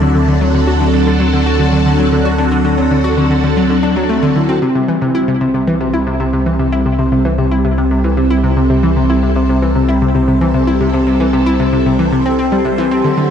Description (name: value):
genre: ambient, sequencer-driven space music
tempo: 114 BPM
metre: 4/4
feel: straight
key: C lydian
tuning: A4 = 440 Hz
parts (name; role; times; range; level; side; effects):
- phased string machine; sustained chords; 0.0-13.3 s; F#3 to A4; -19 LUFS; right 1 dB; ensemble chorus, phaser
- vibraphone with soft mallets; arpeggios; 0.0-13.1 s; F#3 to C5; -15 LUFS; left 2 dB; auto-pan, tape echo
- analog pluck; riff; 0.0-13.3 s; C3 to F#4; -16 LUFS; equal; chorus, tape echo
- warm sub bass; bass; 0.0-13.3 s; C2 to D2; -18 LUFS; right 1 dB; none
- bubbling stepped-filter texture; texture; 5.5-13.3 s; C5; -27 LUFS; right 5 dB; chorus, built-in reverb
room: wet plate reverb, RT60 2.7 s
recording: echo-heavy mix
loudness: -11 LUFS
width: side -8 dB against mid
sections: 0.0-4.6 A section; 4.6-13.3 B section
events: fade-in on string machine 4.6-13.3; fade-in on synth texture 4.6-13.3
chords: 0.0 Dadd9; 4.6 C6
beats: | 0.41 0.94 1.46 1.99 | 2.52 3.04 3.57 4.09 | 4.62 5.15 5.67 6.20 | 6.73 7.25 7.78 8.30 | 8.83 9.36 9.88 10.41 | 10.94 11.46 11.99 12.52 | 13.04